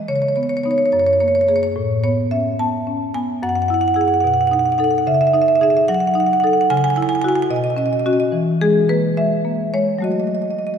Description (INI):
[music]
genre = classical, contemporary piece for solo marimba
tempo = 72 BPM (dotted quarters)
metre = 6/8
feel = rubato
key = unclear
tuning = A4 = 440 Hz
[part]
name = marimba with medium hard mallets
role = solo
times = 0.0-10.8 s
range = F#2 to A5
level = -15 LUFS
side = equal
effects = none
[sound]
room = wet church reverb, RT60 3.2 s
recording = minimal, uncompressed stereo recording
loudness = -15 LUFS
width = side -7 dB against mid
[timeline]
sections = 0.0-10.8 A section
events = none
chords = 0.1 C#sus2; 0.9 F#add9; 1.8 Aadd9; 3.4 F#sus2; 4.2 B7; 5.1 C#madd9; 5.9 F#m6; 6.7 C#madd11; 7.5 Badd9; 8.3 E; 10.0 F#m6